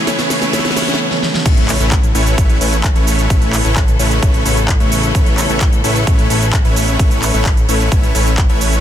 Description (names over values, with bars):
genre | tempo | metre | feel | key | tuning
EDM, festival progressive house | 130 BPM | 4/4 | straight | unclear | A4 = 440 Hz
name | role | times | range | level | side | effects
warm concert grand piano | accompaniment | 0.0-1.5 s | E3 to E4 | -23 LUFS | right 3 dB | vintage 12-bit sampler grit, sidechain pumping, digital delay
clear studio string section | sustained chords | 0.0-8.8 s | C#3 to A4 | -24 LUFS | left 4 dB | sidechain pumping
supersaw chords | riff | 0.0-8.8 s | A3 to C#5 | -18 LUFS | equal | sidechain pumping, digital delay
riser and impact | sound effects | 0.0-3.3 s | none | -23 LUFS | equal | none
big-room dance drum kit | drums | 0.1-8.8 s | cabasa, crash cymbal, handclaps, hi-hat, snare drum | -20 LUFS | right 1 dB | none
fat analog bass | bass | 1.5-8.8 s | A1 | -17 LUFS | equal | sidechain pumping
electronic kick drum | drums | 1.5-8.5 s | none | -13 LUFS | equal | none
room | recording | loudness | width
little or no reverb | dense, heavily limited modern master | -11 LUFS | side -10 dB against mid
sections
0.0-1.5 A section; 1.5-8.8 B section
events
build-up 0.0-1.5; drum fill 0.0-1.0, 1.1-1.5; riser 0.0-1.0; drop 1.5-8.8; impact 1.5-3.3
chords
0.0 Aadd9